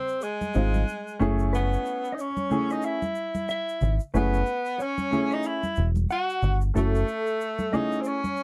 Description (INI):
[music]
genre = hip hop, jazz-hop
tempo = 92 BPM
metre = 4/4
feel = swing 58% on 16ths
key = unclear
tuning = A4 = 440 Hz
[part]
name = clear tenor saxophone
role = melody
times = 0.0-8.4 s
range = Ab3 to Gb4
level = -31 LUFS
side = equal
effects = none
[part]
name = mellow electric guitar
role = second line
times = 0.0-8.4 s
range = Ab4 to Gb5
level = -38 LUFS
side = equal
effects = none
[part]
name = tube shaker and congas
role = percussion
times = 0.1-8.4 s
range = none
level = -38 LUFS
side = equal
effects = none
[part]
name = warm upright piano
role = accompaniment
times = 0.5-8.2 s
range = Ab3 to Ab4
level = -30 LUFS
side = equal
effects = none
[part]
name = deep dub picked electric bass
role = bass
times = 0.6-7.0 s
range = Fb1 to Ab1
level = -26 LUFS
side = equal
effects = none
[sound]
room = little or no reverb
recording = dark, warm production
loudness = -26 LUFS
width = mono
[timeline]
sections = 0.0-8.4 A section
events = none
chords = 0.0 Fm7; 1.2 Gbm9